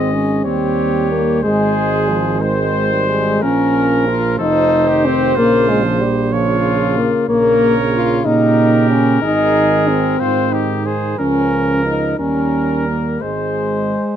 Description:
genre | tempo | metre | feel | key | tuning
classical, brass quintet | 61 BPM (dotted quarters) | 6/8 | rubato | Ab major | A4 = 440 Hz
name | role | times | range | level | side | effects
clear trumpet | melody | 0.0-14.1 s | F4 to Eb5 | -23 LUFS | left 9 dB | none
warm French horn | accompaniment | 0.0-14.2 s | Eb3 to F4 | -16 LUFS | left 2 dB | none
warm trombone | accompaniment | 0.0-14.2 s | Db3 to Ab3 | -23 LUFS | right 3 dB | none
mellow tuba | bass | 0.0-13.9 s | F1 to Bb2 | -19 LUFS | right 4 dB | none
clear flugelhorn | second line | 0.5-14.2 s | Eb4 to Db5 | -21 LUFS | right 6 dB | none
room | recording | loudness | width
moderate studio reverb, RT60 0.5 s | none | -13 LUFS | side -9 dB against mid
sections
0.0-14.2 A section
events
none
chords
0.5 Eb7; 1.4 Ab; 3.4 Bbm; 4.4 F7; 5.4 Bbm; 7.3 Gdim/Bb; 9.2 Ab; 11.2 Bbm/Db; 12.2 Eb7; 13.2 Ab

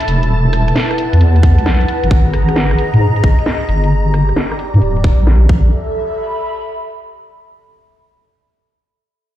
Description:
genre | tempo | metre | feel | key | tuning
UK garage, two-step garage | 133 BPM | 4/4 | swing 67% on 16ths | unclear | A4 = 440 Hz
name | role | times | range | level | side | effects
soft string machine | sustained chords | 0.0-5.5 s | A5 to A#5 | -24 LUFS | right 1 dB | ensemble chorus, sidechain pumping
garage drum kit | drums | 0.0-5.5 s | hi-hat, rim click, snare drum | -21 LUFS | equal | low-pass filter on hats, low-pass filter on snare
airy breathy pad | texture | 0.0-7.5 s | E4 to B5 | -21 LUFS | equal | chorus, sidechain pumping
deep soft wobble bass | bass | 0.1-5.7 s | D1 to G#2 | -11 LUFS | equal | chorus
electronic kick drum | drums | 1.4-5.6 s | none | -11 LUFS | equal | none
room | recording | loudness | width
little or no reverb | played on a big sound system in a bare room, large studio reverb | -11 LUFS | side -13 dB against mid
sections
0.0-5.7 A section; 5.7-7.5 B section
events
filter sweep on drum 0.0-5.7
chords
0.1 Esus24; 1.9 G#m9; 3.9 Gm; 5.5 A5; 5.7 Asus2

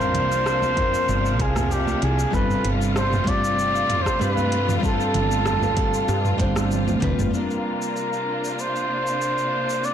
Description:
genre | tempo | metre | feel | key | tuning
sunset chillout | 96 BPM | 4/4 | swing 53% on 16ths | unclear | A4 = 440 Hz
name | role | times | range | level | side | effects
warm flugelhorn | melody | 0.0-9.9 s | G4 to D5 | -24 LUFS | right 1 dB | ping-pong delay
nylon-string guitar | accompaniment | 0.0-9.9 s | F3 to C5 | -28 LUFS | moving between left 6 dB and right 5 dB | auto-pan, ping-pong delay
clear studio string section | sustained chords | 0.0-9.9 s | C3 to F4 | -28 LUFS | left 1 dB | low-pass filter
woody fretless electric bass | bass | 0.0-7.3 s | G1 to G2 | -25 LUFS | equal | tube saturation, analog chorus
deep house drum kit | drums | 0.0-9.9 s | hi-hat, rim click, shaker, toms | -30 LUFS | equal | overdrive
wind-like tuned noise texture | texture | 0.0-7.3 s | F5 to F6 | -36 LUFS | left 4 dB | built-in reverb
congas | percussion | 0.1-7.3 s | none | -32 LUFS | right 5 dB | none
electronic kick drum | drums | 0.8-7.2 s | none | -26 LUFS | equal | overdrive
room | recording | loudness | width
light reverb, small room ambience | blown-out, overdriven recording, overdrive | -20 LUFS | side -9 dB against mid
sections
0.0-7.3 A section; 7.3-9.9 B section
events
drum fill 6.7-7.3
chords
0.0 C9sus4; 2.3 G9sus4; 7.3 C9sus4

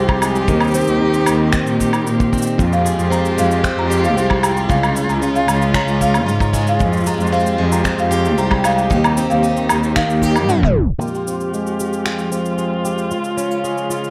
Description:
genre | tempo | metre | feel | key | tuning
folktronica | 114 BPM | 4/4 | straight | F minor | A4 = 440 Hz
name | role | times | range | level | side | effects
warm string quartet | sustained chords | 0.0-14.1 s | Db3 to G4 | -24 LUFS | equal | low-pass filter
picked plugged-in twelve-string acoustic guitar | arpeggios | 0.0-14.1 s | F2 to G4 | -23 LUFS | equal | low-pass filter, digital delay
muted cello | bass | 0.0-10.8 s | C2 to Bb2 | -21 LUFS | equal | none
electronic woodblock, cabasa and finger snaps | drums | 0.1-14.1 s | none | -25 LUFS | equal | overdrive
kick drum | drums | 0.1-10.8 s | none | -21 LUFS | equal | none
marimba with medium hard mallets | second line | 2.7-10.7 s | F5 to C6 | -24 LUFS | equal | delay
room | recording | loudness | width
light reverb, small room ambience | vinyl crackle, tape stop | -17 LUFS | mono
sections
0.0-11.0 A section; 11.0-14.1 B section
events
filter sweep on twelve-string acoustic guitar 0.0-11.0, 11.0-14.1; tape stop 10.5-11.0; filter sweep on string quartet 11.0-14.1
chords
0.5 Cm/Eb; 2.6 Fmadd9; 4.7 Db; 6.8 Fmadd9; 8.9 Cm/Eb; 11.0 Fmadd9; 13.1 Db

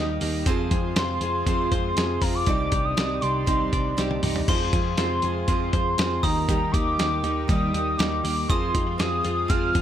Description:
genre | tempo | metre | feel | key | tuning
jangly indie pop | 120 BPM | 4/4 | straight | F dorian | A4 = 440 Hz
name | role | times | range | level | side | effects
warbly nostalgic lead | melody | 0.0-9.8 s | Bb5 to F6 | -28 LUFS | equal | chorus
fingerpicked steel-string acoustic guitar | accompaniment | 0.0-9.8 s | C3 to Eb5 | -30 LUFS | right 6 dB | none
lush unison pad | sustained chords | 0.0-9.8 s | C3 to G4 | -34 LUFS | equal | chorus
direct-recorded clean electric guitar | arpeggios | 0.0-9.8 s | C3 to D5 | -31 LUFS | left 7 dB | none
vintage muted picked electric bass | bass | 0.0-9.8 s | C2 to F2 | -29 LUFS | equal | none
dusty soul sampler-style drum kit | drums | 0.2-9.8 s | crash cymbal, hi-hat, kick drum, snare drum, toms | -26 LUFS | equal | none
glockenspiel with hard plastic mallets | second line | 4.5-9.8 s | C6 to Eb6 | -34 LUFS | left 3 dB | tape echo
room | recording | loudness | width
light reverb | none | -21 LUFS | side -10 dB against mid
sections
0.0-9.8 A section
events
drum fill 4.0-4.5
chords
0.5 Fm; 2.5 Cmadd9; 4.5 Fm; 6.2 Eb; 8.5 Fm

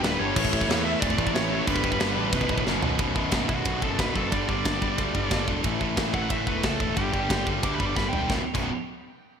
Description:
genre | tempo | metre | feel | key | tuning
heavy metal | 181 BPM | 4/4 | straight | B minor | A4 = 439 Hz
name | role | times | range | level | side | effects
high-gain lead guitar | melody | 0.0-8.3 s | F#4 to D6 | -32 LUFS | right 1 dB | distortion, digital delay
clear studio string section | sustained chords | 0.0-3.0 s | F#3 to E5 | -38 LUFS | right 1 dB | none
heavy high-gain guitar | riff | 0.0-8.7 s | B1 to A3 | -29 LUFS | left 11 dB | distortion
heavy high-gain guitar | riff | 0.0-8.7 s | B1 to A3 | -30 LUFS | right 12 dB | distortion
fuzz picked electric bass | bass | 0.0-8.7 s | B0 to A2 | -32 LUFS | equal | overdrive
tight metal drum kit | drums | 0.0-8.6 s | china cymbal, crash cymbal, kick drum, ride cymbal, snare drum, toms | -28 LUFS | equal | gated reverb
room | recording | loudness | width
moderate lush hall reverb, RT60 1.5 s, small room reverb | bright 1980s-style digital production | -23 LUFS | side -7 dB against mid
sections
0.0-3.0 A section; 3.0-8.3 B section; 8.3-9.4 C section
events
drum fill 2.7-3.0, 8.0-8.3; lead electric guitar solo 3.0-8.3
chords
0.4 A; 1.7 G; 2.3 Bm; 3.0 B5; 4.3 G5; 5.6 A5; 7.0 G5; 8.3 B5

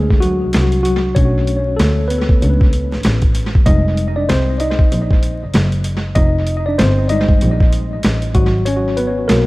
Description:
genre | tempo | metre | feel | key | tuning
hip hop, jazz-hop | 96 BPM | 4/4 | swing 61% on 16ths | unclear | A4 = 439 Hz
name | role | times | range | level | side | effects
mellow tine electric piano | accompaniment | 0.0-9.5 s | F#3 to Eb5 | -18 LUFS | left 1 dB | medium stereo tremolo, tape echo
clear double bass | bass | 0.0-9.5 s | F1 to D2 | -17 LUFS | equal | none
boom bap sampler-style drum kit | drums | 0.1-9.5 s | hi-hat, kick drum, snare drum | -16 LUFS | equal | tape echo
room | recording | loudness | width
digital ambience | echo-heavy mix, vinyl crackle | -12 LUFS | side -20 dB against mid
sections
0.0-9.5 A section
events
tine electric piano solo 0.0-9.5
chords
0.0 Bm9; 3.7 Fm9; 8.3 Abm9

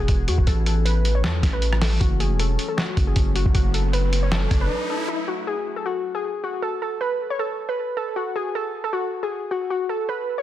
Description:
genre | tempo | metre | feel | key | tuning
hip hop, trap | 156 BPM | 4/4 | half-time | unclear | A4 = 440 Hz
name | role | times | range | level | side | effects
warbly dusty pluck | melody | 0.0-10.4 s | E4 to C#5 | -26 LUFS | left 1 dB | chorus, low-pass filter, digital delay
glassy FM pad | sustained chords | 0.0-5.1 s | E3 to G#4 | -32 LUFS | left 1 dB | ensemble chorus, built-in reverb
distorted 808-style bass | bass | 0.0-4.7 s | E1 to E2 | -21 LUFS | equal | distortion
lo-fi sampler-style drum kit | drums | 0.1-4.6 s | handclaps, hi-hat, kick drum, rim click, snare drum | -22 LUFS | equal | overdrive
riser | sound effects | 3.4-5.1 s | none | -32 LUFS | equal | none
room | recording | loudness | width
light reverb | dense, heavily limited modern master | -20 LUFS | side -12 dB against mid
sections
0.0-5.1 A section; 5.1-10.4 B section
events
riser 3.4-5.1; break 4.7-5.1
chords
0.5 A; 2.0 F#m; 5.1 N.C.

